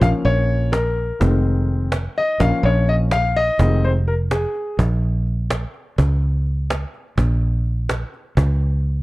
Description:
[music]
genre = progressive instrumental, band music in an uneven meter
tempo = 252 BPM (eighths)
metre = 5/8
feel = straight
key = Bb minor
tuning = A4 = 441 Hz
[part]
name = warm grand piano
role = accompaniment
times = 0.0-4.8 s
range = Eb3 to F5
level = -20 LUFS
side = left 2 dB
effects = none
[part]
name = fingered electric bass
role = bass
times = 0.0-9.0 s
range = F1 to Db2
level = -18 LUFS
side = equal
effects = none
[part]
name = cajon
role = drums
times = 0.0-8.9 s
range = none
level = -26 LUFS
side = right 1 dB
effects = none
[sound]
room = small room ambience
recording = dry, close 1970s-style studio recording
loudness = -17 LUFS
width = side -20 dB against mid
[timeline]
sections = 0.0-4.8 A section; 4.8-9.0 B section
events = grand piano solo 0.0-4.8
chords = 0.0 Bbm; 1.2 Fm7; 2.4 Bbm; 3.6 Fm7; 4.8 N.C.

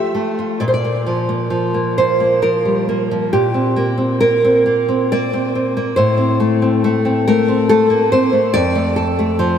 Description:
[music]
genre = romantic piece for solo classical guitar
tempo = 68 BPM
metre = 3/4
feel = uneven beats, rubato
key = unclear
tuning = A4 = 440 Hz
[part]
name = nylon-string guitar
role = solo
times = 0.0-9.6 s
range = F2 to E5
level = -14 LUFS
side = equal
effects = lush chorus, diffuse ambient delay
[sound]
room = wet lush hall reverb, RT60 2.7 s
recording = dreamy mix soaked in reverb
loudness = -13 LUFS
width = side -8 dB against mid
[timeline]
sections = 0.0-9.6 A section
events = none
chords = 0.0 F; 0.6 Bb; 3.3 C5/Bb; 6.0 Am; 8.5 Dm/F

